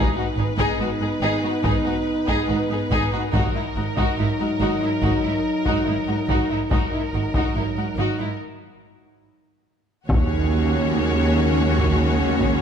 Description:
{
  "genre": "cinematic, epic orchestral film score",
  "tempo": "71 BPM",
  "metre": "4/4",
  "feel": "straight",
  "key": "unclear",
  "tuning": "A4 = 440 Hz",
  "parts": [
    { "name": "rich symphonic violin section", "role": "melody", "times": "0.0-12.6 s", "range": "A#4 to Db5", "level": "-31 LUFS", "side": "left 2 dB", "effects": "none" },
    { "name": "warm symphonic violin section", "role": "second line", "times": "0.0-12.6 s", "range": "E4 to G#4", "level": "-29 LUFS", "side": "left 4 dB", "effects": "none" },
    { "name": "rich symphonic viola section", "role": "accompaniment", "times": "0.0-12.6 s", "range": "Db4 to D#4", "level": "-30 LUFS", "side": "right 2 dB", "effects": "none" },
    { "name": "mellow French horn section", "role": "sustained chords", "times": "0.0-12.6 s", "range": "F#3 to D#4", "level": "-26 LUFS", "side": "left 1 dB", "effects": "none" },
    { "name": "clear studio double bass section", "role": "bass", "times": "0.0-12.6 s", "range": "G#1 to Eb2", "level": "-26 LUFS", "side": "right 2 dB", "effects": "none" },
    { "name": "rich symphonic cello section", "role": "bass", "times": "0.0-12.6 s", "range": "Eb2 to G#2", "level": "-27 LUFS", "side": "right 3 dB", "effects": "none" },
    { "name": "taiko ensemble", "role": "drums", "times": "0.6-12.6 s", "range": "none", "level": "-25 LUFS", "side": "left 1 dB", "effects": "none" },
    { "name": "clear studio string section", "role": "sustained chords", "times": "10.1-12.6 s", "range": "Db4 to Db5", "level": "-29 LUFS", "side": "left 1 dB", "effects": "none" },
    { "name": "warm trombone section", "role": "sustained chords", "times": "10.1-12.6 s", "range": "Db3 to Gb3", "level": "-30 LUFS", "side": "right 3 dB", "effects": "none" },
    { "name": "clear tuba", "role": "bass", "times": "10.1-12.6 s", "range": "Eb2", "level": "-27 LUFS", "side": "right 5 dB", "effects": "none" }
  ],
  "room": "moderate scoring stage reverb, RT60 2.0 s",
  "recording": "dark, warm production",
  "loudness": "-19 LUFS",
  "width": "side -8 dB against mid",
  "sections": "0.0-10.1 A section; 10.1-12.6 B section",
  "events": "break 8.4-10.1; drum fill 9.3-10.1",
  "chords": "0.0 G#m; 3.3 D#m/G#; 10.1 Dbsus4/Eb"
}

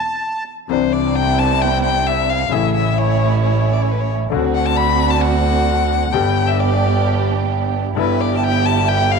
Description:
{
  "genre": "tango",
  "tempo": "132 BPM",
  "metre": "4/4",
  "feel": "rubato",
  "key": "C major",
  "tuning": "A4 = 440 Hz",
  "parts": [
    { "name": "warm violin", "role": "second line", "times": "0.0-9.2 s", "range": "B4 to B5", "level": "-20 LUFS", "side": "left 10 dB", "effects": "none" },
    { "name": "clear concert grand piano", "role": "accompaniment", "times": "0.7-9.2 s", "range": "G1 to G4", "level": "-21 LUFS", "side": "left 8 dB", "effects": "none" },
    { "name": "warm symphonic string section", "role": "stabs", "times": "0.7-9.2 s", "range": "A3 to G4", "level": "-22 LUFS", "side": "right 13 dB", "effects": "none" },
    { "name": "rich double bass", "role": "bass", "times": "0.7-9.2 s", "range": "G1 to D2", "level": "-19 LUFS", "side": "right 4 dB", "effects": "none" }
  ],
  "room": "light reverb, small room ambience",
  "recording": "1960s-style stereo with parts hard left and right",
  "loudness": "-15 LUFS",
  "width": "side -5 dB against mid",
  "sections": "0.7-9.2 A section",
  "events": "break 0.0-0.7; violin solo 0.7-9.2",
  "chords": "0.0 N.C.; 0.7 Cadd9; 2.5 A; 4.3 D7; 6.1 G; 8.0 G6"
}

